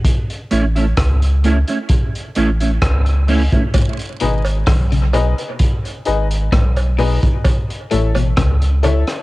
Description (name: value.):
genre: dub reggae.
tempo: 65 BPM.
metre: 4/4.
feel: straight.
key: unclear.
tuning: A4 = 440 Hz.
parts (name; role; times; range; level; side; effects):
crunchy breakbeat drum kit; drums; 0.0-9.2 s; hi-hat, kick drum, rim click; -18 LUFS; equal; none.
clean electric guitar; accompaniment; 0.5-3.6 s; A3 to E4; -20 LUFS; right 2 dB; ensemble chorus, high-pass filter, cassette tape, dub echo.
warm sub bass; bass; 0.5-9.0 s; G#1 to C#2; -15 LUFS; equal; tube saturation.
cowbell and jawbone-type rattle; percussion; 3.7-9.1 s; none; -28 LUFS; right 3 dB; dub echo.
clean electric guitar; arpeggios; 3.8-9.0 s; G#2 to D#3; -23 LUFS; left 4 dB; phaser, cassette tape, dub echo.
clear upright piano; stabs; 4.2-9.2 s; D#4 to E5; -23 LUFS; left 5 dB; cassette tape, dub echo.
room: small room ambience.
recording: home recording on cassette.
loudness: -14 LUFS.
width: side -19 dB against mid.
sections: 0.0-9.2 A section.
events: break 0.0-3.7.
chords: 0.0 A; 3.7 G#m; 7.5 A.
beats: | 0.05 0.97 1.90 2.82 | 3.75 4.67 5.60 6.53 | 7.45 8.38.